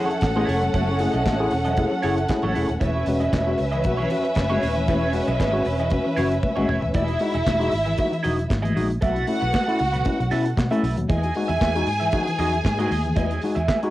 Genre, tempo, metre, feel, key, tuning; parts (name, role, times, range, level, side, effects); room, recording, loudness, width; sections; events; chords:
disco; 116 BPM; 4/4; straight; A4 = 439 Hz
warm studio violin section; second line; 0.0-13.9 s; C#4 to G#5; -25 LUFS; equal; cassette tape
electric guitar at the edge of break-up; accompaniment; 0.0-13.9 s; E4 to F#5; -30 LUFS; right 4 dB; wah, tube saturation, cassette tape
overdriven tine electric piano; accompaniment; 0.0-13.9 s; B2 to G#4; -26 LUFS; left 2 dB; phaser, cassette tape
damped 70s drum kit; drums; 0.1-13.9 s; handclaps, hi-hat, kick drum, snare drum, toms; -26 LUFS; equal; cassette tape
fingered electric bass; bass; 0.2-13.7 s; D#1 to B2; -26 LUFS; equal
congas; percussion; 0.2-13.8 s; -31 LUFS; left 2 dB
studio reverb; home recording on cassette; -20 LUFS; side -15 dB against mid
0.0-7.0 A section; 7.0-13.9 B section
drum fill 6.4-7.0
0.0 F#m7; 2.8 E6; 7.0 Emaj7; 9.0 B7sus4; 11.1 Emaj7